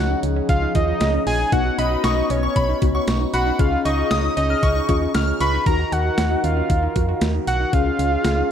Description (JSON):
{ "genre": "synth-pop", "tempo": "116 BPM", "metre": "4/4", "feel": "straight", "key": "unclear", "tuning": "A4 = 442 Hz", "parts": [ { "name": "fat analog lead", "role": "melody", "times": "0.0-8.5 s", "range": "C#5 to B5", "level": "-23 LUFS", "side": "equal", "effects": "analog delay" }, { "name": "FM electric piano with tremolo", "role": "accompaniment", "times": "0.0-8.5 s", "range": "E#3 to A#4", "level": "-27 LUFS", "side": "left 11 dB", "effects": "none" }, { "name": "mellow French horn section", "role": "sustained chords", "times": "0.0-8.5 s", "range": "C#3 to A#4", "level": "-28 LUFS", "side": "right 3 dB", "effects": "stereo widening" }, { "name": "solid FM bass", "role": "bass", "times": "0.0-8.4 s", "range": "A#1 to E#2", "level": "-23 LUFS", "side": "equal", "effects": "none" }, { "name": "soft round pluck", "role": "arpeggios", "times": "0.1-8.5 s", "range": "C#4 to F#4", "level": "-30 LUFS", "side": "right 9 dB", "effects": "chorus, analog delay" }, { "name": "clean 12-bit digital drum machine", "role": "drums", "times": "0.2-8.4 s", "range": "hi-hat, kick drum, snare drum", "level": "-23 LUFS", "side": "equal", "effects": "none" }, { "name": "shimmering bell with halo", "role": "second line", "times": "1.8-5.5 s", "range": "B5 to E#6", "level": "-27 LUFS", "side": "left 3 dB", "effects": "ensemble chorus, analog delay" } ], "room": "moderate plate reverb, RT60 1.6 s", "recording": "dreamy mix soaked in reverb", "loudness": "-17 LUFS", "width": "side -8 dB against mid", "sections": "0.0-8.5 A section", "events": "none", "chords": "0.0 C#add9; 1.5 Badd9; 3.6 C#add9; 5.7 D#madd9; 7.7 C#add9" }